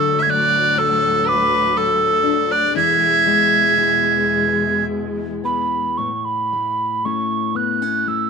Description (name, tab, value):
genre	celtic folk, Celtic slow air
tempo	52-62 BPM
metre	3/4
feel	rubato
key	A major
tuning	A4 = 441 Hz
part	mellow hollow mid whistle	melody	0.0-8.3 s	B5 to G#6	-17 LUFS	right 6 dB	none
part	clear fiddle	second line	0.0-4.8 s	A4 to E5	-21 LUFS	left 11 dB	none
part	fingerpicked steel-string acoustic guitar	accompaniment	0.0-8.3 s	E2 to F#4	-24 LUFS	left 14 dB	none
part	dark chamber string section	sustained chords	0.0-6.0 s	D2 to G#3	-27 LUFS	right 2 dB	none
room	light reverb, small room ambience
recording	1960s-style stereo with parts hard left and right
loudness	-15 LUFS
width	side -5 dB against mid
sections	0.0-6.0 A section; 6.0-8.3 B section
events	none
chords	0.0 D; 2.7 E; 6.0 A